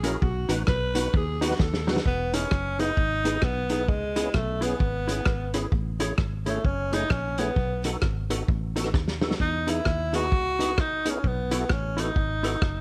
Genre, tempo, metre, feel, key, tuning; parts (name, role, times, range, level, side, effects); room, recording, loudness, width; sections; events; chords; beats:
ska; 131 BPM; 4/4; swing 61% on 8ths; E major; A4 = 441 Hz
raspy alto saxophone; melody; 0.0-2.1 s; F#4 to B4; -34 LUFS; equal; slapback echo
mellow electric guitar; accompaniment; 0.0-12.6 s; C#4 to C#5; -35 LUFS; equal
tonewheel organ; stabs; 0.0-12.6 s; A3 to B4; -35 LUFS; equal; overdrive, chorus vibrato, slow rotary speaker, slapback echo
fingered electric bass; bass; 0.0-12.8 s; E1 to E2; -33 LUFS; equal
vintage drum kit; drums; 0.0-12.8 s; hi-hat, kick drum, rim click, snare drum; -29 LUFS; equal
breathy tenor saxophone; melody; 2.1-12.8 s; G#3 to F#4; -31 LUFS; equal
light reverb, small room ambience; -26 LUFS; mono
0.0-2.1 A section; 2.1-12.8 B section
alto saxophone solo 0.0-2.1; drum fill 1.6-2.1, 8.9-9.4
0.2 B; 2.1 Emaj7; 3.9 C#m7; 5.7 Amaj7; 7.6 B7; 9.4 Emaj7; 11.2 B7sus4
| 0.22 0.68 1.14 1.59 | 2.05 2.51 2.97 3.43 | 3.89 4.35 4.80 5.26 | 5.72 6.18 6.64 7.10 | 7.56 8.02 8.48 8.94 | 9.40 9.86 10.32 10.78 | 11.24 11.70 12.16 12.62